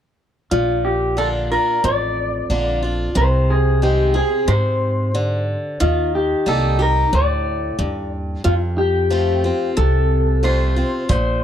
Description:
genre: honky-tonk and classic country.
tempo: 91 BPM.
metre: 4/4.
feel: straight.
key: Bb major.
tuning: A4 = 439 Hz.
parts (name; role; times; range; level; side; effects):
electric guitar through a small old amp; melody; 0.5-11.4 s; F4 to D5; -20 LUFS; left 2 dB; warbly pitch drift.
picked swing-style acoustic guitar; accompaniment; 0.5-11.4 s; F2 to Ab4; -24 LUFS; equal; none.
upright bass; bass; 0.5-11.4 s; A1 to Ab2; -19 LUFS; right 1 dB; none.
natural country drum kit; drums; 11.1-11.3 s; hi-hat, kick drum; -19 LUFS; right 1 dB; none.
room: small room ambience.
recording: dry, close 1970s-style studio recording.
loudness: -16 LUFS.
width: side -10 dB against mid.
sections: 0.5-11.1 A section.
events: none.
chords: 0.5 Bb; 3.2 Ab/C; 5.8 Eb; 8.4 F.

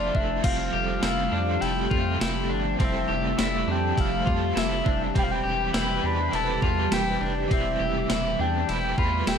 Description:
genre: dream pop.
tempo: 102 BPM.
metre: 4/4.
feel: straight.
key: unclear.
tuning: A4 = 440 Hz.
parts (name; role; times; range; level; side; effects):
soft octave-layered synth lead; melody; 0.0-9.4 s; D5 to B5; -29 LUFS; left 1 dB; chorus, ping-pong delay.
overdriven electric guitar; accompaniment; 0.0-9.4 s; E3 to B4; -32 LUFS; right 6 dB; tremolo, ensemble chorus.
phased analog pad; sustained chords; 0.0-9.4 s; C3 to B4; -30 LUFS; equal; phaser, chorus.
electric guitar at the edge of break-up; arpeggios; 0.0-9.4 s; C4 to G4; -30 LUFS; left 5 dB; wide subtle chorus, ping-pong delay.
round analog bass; bass; 0.0-9.4 s; E1 to F2; -30 LUFS; equal; none.
gated 80s digital drum machine; drums; 0.1-9.4 s; crash cymbal, kick drum, ride cymbal, snare drum, tambourine; -28 LUFS; equal; gated reverb, gated reverb snare.
room: light reverb.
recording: none.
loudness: -22 LUFS.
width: side -7 dB against mid.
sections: 0.4-9.4 A section.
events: none.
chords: 0.4 Fmaj9; 5.2 Cmaj7/E.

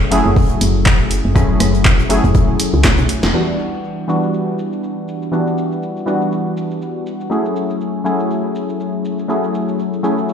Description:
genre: deep house.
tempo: 121 BPM.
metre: 4/4.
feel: swing 56% on 16ths.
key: unclear.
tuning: A4 = 441 Hz.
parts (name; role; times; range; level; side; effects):
warm analog keys; stabs; 0.0-10.3 s; E3 to G#4; -17 LUFS; left 1 dB; chorus, sidechain pumping, low-pass filter, dub echo.
woody FM bass; bass; 0.0-3.3 s; E1 to C#2; -17 LUFS; equal; tube saturation, sidechain pumping.
punchy analog drum machine; drums; 0.1-10.3 s; crash cymbal, handclaps, hi-hat, rim click, shaker, snare drum; -19 LUFS; equal; low-pass filter on hats, low-pass filter on snare, low-pass filter on cymbals, low-pass filter on perc, low-pass filter on room.
electronic kick drum; drums; 0.4-3.0 s; none; -15 LUFS; equal; none.
open jazz drum kit; drums; 0.4-3.2 s; hi-hat, snare drum; -30 LUFS; left 3 dB; high-pass filter on hats, high-pass filter on snare, high-pass filter on room.
room: light reverb, digital ambience.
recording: played on a big sound system in a bare room, large studio reverb.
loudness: -14 LUFS.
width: side -8 dB against mid.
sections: 0.0-3.3 A section; 3.3-10.3 B section.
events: drum fill 2.8-3.3; band accent 3.2.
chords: 0.0 F#m9; 3.3 Em9; 7.3 F#m9.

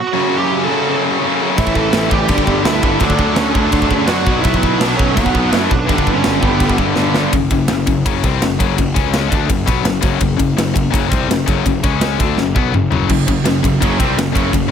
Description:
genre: heavy metal.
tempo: 167 BPM.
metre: 4/4.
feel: straight.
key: F# phrygian.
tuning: A4 = 438 Hz.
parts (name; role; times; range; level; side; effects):
high-gain lead guitar; melody; 0.0-6.8 s; B3 to A4; -20 LUFS; right 5 dB; distortion, ping-pong delay.
high-gain distorted guitar; riff; 0.1-7.3, 13.1-14.7 s; F#2 to D4; -20 LUFS; right 14 dB; distortion.
tight distorted guitar; riff; 0.1-14.7 s; F#2 to D4; -18 LUFS; left 12 dB; distortion.
smooth overdriven lead guitar; second line; 1.6-6.8 s; F#4 to E5; -26 LUFS; right 5 dB; ping-pong delay.
fuzz picked electric bass; bass; 1.6-14.7 s; F#1 to F#2; -19 LUFS; right 1 dB; overdrive.
tight metal drum kit; drums; 1.6-14.6 s; crash cymbal, kick drum, ride cymbal, snare drum, toms; -17 LUFS; right 1 dB; none.
room: small room ambience.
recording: none.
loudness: -13 LUFS.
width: side -8 dB against mid.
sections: 0.0-7.3 A section; 7.3-14.7 B section.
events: drum fill 7.0-7.3, 12.4-13.1.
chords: 0.1 F#m; 1.6 A5; 2.3 G; 3.0 D; 4.3 B5; 5.9 G; 7.3 F#5; 9.0 C#5; 9.3 F#5; 11.8 C#5; 12.2 F#5.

